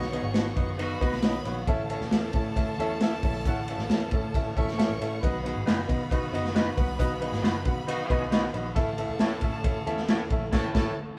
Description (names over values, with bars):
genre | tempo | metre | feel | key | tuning
uptempo 1960s-style soul | 136 BPM | 4/4 | straight | unclear | A4 = 440 Hz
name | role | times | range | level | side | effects
warm studio violin section | second line | 0.0-10.9 s | A4 to C#6 | -42 LUFS | equal | none
warm upright piano | accompaniment | 0.0-10.9 s | A2 to F#5 | -34 LUFS | equal | none
mellow tonewheel organ | sustained chords | 0.0-11.2 s | D#3 to A4 | -42 LUFS | equal | none
vintage muted picked electric bass | bass | 0.0-10.9 s | E1 to B2 | -37 LUFS | equal | none
crunchy breakbeat drum kit | drums | 0.0-10.9 s | crash cymbal, hi-hat, kick drum, ride cymbal, snare drum | -30 LUFS | equal | none
mellow horn section | second line | 0.1-1.2, 5.4-8.3 s | B3 to B4 | -41 LUFS | equal | none
electric guitar through a small old amp | stabs | 5.7-10.9 s | D#4 to C#5 | -38 LUFS | equal | spring reverb
room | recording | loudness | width
moderate large studio reverb, RT60 0.9 s | band playing live in one room | -27 LUFS | mono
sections
0.0-11.2 A section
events
band accent 10.5-11.2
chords
0.0 B; 1.7 A; 5.2 B; 8.8 A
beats
0.34 0.79 1.23 | 1.68 2.12 2.56 3.01 | 3.45 3.89 4.34 4.78 | 5.22 5.67 6.11 6.55 | 6.99 7.44 7.88 8.32 | 8.76 9.21 9.65 10.09 | 10.53 10.97